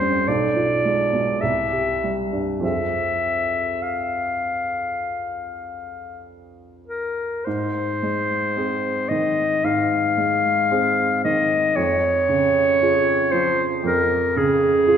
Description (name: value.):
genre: classical, romantic duo for clarinet and grand piano.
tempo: 48-59 BPM.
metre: 4/4.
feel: rubato.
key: F minor, Ab major from 7.5 s.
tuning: A4 = 440 Hz.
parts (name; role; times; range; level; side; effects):
clear clarinet; melody; 0.0-15.0 s; Ab4 to F5; -20 LUFS; left 1 dB; none.
warm baby grand piano; accompaniment; 0.0-15.0 s; Bb1 to Ab4; -24 LUFS; right 2 dB; none.
room: wet scoring stage reverb, RT60 1.6 s.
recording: heard from further back in the room.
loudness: -19 LUFS.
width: side -8 dB against mid.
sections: 0.0-7.5 A section; 7.5-15.0 B section.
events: none.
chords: 0.3 Bdim7; 1.4 C; 2.6 Fm; 7.5 Ab; 11.8 Db/F.